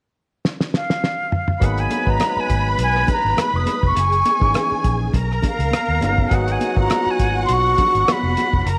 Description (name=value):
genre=lush 1970s-style soul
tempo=102 BPM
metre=4/4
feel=swing 54% on 16ths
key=G# dorian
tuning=A4 = 440 Hz
part: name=cloth-damped thuddy drum kit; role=drums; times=0.5-8.8 s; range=hi-hat, kick drum, rim click, snare drum, toms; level=-24 LUFS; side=equal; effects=none
part: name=breathy concert flute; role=melody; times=0.8-8.8 s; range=E#5 to D#6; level=-22 LUFS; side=equal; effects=none
part: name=rich studio string section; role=second line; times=1.6-8.8 s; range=F#4 to B5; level=-28 LUFS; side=equal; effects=none
part: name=barky tine electric piano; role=accompaniment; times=1.6-8.7 s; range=E3 to B4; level=-28 LUFS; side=equal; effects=overdrive
part: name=vintage muted fingered electric bass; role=bass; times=1.6-8.8 s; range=E#1 to D#2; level=-24 LUFS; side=equal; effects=none
part: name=congas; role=percussion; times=1.9-8.5 s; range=none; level=-32 LUFS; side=equal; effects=none
room=light reverb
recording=none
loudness=-19 LUFS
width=mono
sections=0.0-1.6 A section; 1.6-8.8 B section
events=drum fill 0.4-1.6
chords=0.0 N.C.; 1.6 G#m7; 4.0 F#13; 5.1 Bmaj7; 6.3 G#m7